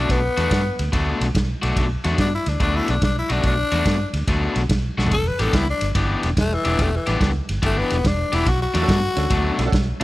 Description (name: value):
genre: electric blues shuffle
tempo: 143 BPM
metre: 4/4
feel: swing 66% on 8ths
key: B minor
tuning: A4 = 440 Hz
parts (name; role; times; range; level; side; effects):
- growling tenor saxophone; melody; 0.0-9.8 s; E3 to B4; -24 LUFS; left 2 dB; none
- crunchy overdriven guitar; riff; 0.0-10.0 s; B2 to G4; -25 LUFS; left 2 dB; none
- vintage muted fingered electric bass; bass; 0.0-10.0 s; E1 to G2; -23 LUFS; equal; none
- vintage drum kit; drums; 0.1-10.0 s; kick drum, ride cymbal, snare drum, toms; -23 LUFS; right 1 dB; none
- bright upright piano; accompaniment; 8.7-10.0 s; C#4 to A4; -29 LUFS; right 5 dB; none
room: small room ambience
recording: none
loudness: -18 LUFS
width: side -17 dB against mid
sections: 0.0-10.0 A section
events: tenor saxophone solo 0.0-10.0; drum fill 4.9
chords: 0.0 Bm7; 5.1 Em7; 8.5 Bm7